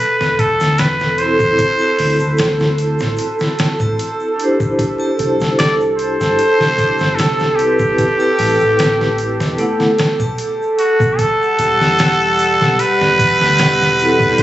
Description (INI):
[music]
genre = trip hop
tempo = 75 BPM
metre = 4/4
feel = straight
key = E minor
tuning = A4 = 440 Hz
[part]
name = trumpet with straight mute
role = melody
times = 0.0-14.4 s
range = F#4 to D5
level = -16 LUFS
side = equal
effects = vintage 12-bit sampler grit, dub echo
[part]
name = warbly tape-like pad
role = sustained chords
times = 0.0-14.4 s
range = G3 to F#5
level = -18 LUFS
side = right 1 dB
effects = chorus, built-in reverb
[part]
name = deep dub fingered electric bass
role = bass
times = 0.2-14.4 s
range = E1 to D2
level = -21 LUFS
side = equal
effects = none
[part]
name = dusty soul sampler-style drum kit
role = drums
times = 0.2-14.4 s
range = hi-hat, kick drum, snare drum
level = -20 LUFS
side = equal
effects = studio reverb
[part]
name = egg shaker and triangle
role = percussion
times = 0.2-14.4 s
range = none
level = -39 LUFS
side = equal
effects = none
[part]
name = vibraphone with medium hard mallets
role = accompaniment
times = 1.2-14.4 s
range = A3 to F#5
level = -19 LUFS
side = left 1 dB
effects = tremolo
[sound]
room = light reverb, small room ambience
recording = recorded on a phone in the room, studio ambience, vinyl crackle, nothing above 8.0 kHz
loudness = -12 LUFS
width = side -14 dB against mid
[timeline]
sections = 0.0-11.2 A section; 11.2-14.4 B section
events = none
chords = 0.0 Esus4; 1.6 D7; 4.8 C; 8.0 Am7; 9.6 B7sus4; 11.2 Emadd9